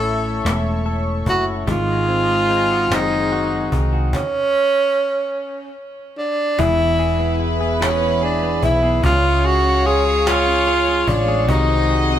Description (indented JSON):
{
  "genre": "six-eight pop ballad",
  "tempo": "49 BPM (dotted quarters)",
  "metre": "6/8",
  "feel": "straight",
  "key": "unclear",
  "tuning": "A4 = 440 Hz",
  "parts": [
    { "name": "breathy tenor saxophone", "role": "melody", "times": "0.0-12.2 s", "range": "C#4 to A4", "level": "-18 LUFS", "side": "right 1 dB", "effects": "ping-pong delay" },
    { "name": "direct-recorded clean electric guitar", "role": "accompaniment", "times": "0.0-12.2 s", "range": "A2 to A4", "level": "-26 LUFS", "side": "left 5 dB", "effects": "none" },
    { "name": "chorused pulse-width pad", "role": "sustained chords", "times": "0.0-12.2 s", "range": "G#4 to C#6", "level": "-28 LUFS", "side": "equal", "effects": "none" },
    { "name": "woody fretless electric bass", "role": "bass", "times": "0.0-12.2 s", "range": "E1 to C#2", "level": "-21 LUFS", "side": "equal", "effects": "none" },
    { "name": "cajon", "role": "drums", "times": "0.0-12.0 s", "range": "none", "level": "-26 LUFS", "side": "equal", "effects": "none" },
    { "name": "direct-recorded clean electric guitar", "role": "arpeggios", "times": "1.7-12.2 s", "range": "D#3 to G#4", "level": "-27 LUFS", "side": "right 4 dB", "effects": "none" },
    { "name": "warm studio violin section", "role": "second line", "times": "6.6-12.2 s", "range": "B4 to D#5", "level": "-26 LUFS", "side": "equal", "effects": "none" }
  ],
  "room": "moderate large studio reverb, RT60 1.2 s",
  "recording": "band playing live in one room",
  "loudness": "-16 LUFS",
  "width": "side -10 dB against mid",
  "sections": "0.0-6.6 A section; 6.6-12.2 B section",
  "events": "stop 4.1-6.6",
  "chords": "0.0 A; 1.7 G#7; 4.1 N.C.; 6.6 E; 9.0 C#; 11.5 G#7/B#"
}